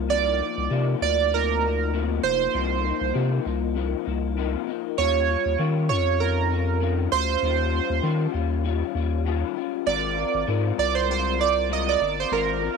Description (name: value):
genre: indie pop, bedroom pop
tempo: 98 BPM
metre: 4/4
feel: swing 55% on 16ths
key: unclear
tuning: A4 = 439 Hz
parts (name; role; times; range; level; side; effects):
- electric guitar through a small old amp; accompaniment; 0.0-12.8 s; C3 to Bb4; -28 LUFS; left 20 dB; ensemble chorus, warbly pitch drift
- saturated sub bass; bass; 0.0-12.7 s; F1 to Eb3; -26 LUFS; left 1 dB; none
- chorused retro synth keys; melody; 0.1-12.8 s; Bb4 to Eb5; -23 LUFS; right 11 dB; analog chorus, slapback echo
room: little or no reverb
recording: 1960s-style stereo with parts hard left and right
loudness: -21 LUFS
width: side -5 dB against mid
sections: 0.0-12.8 A section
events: none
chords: 0.0 Cm11; 5.0 Eb9; 9.9 Ab69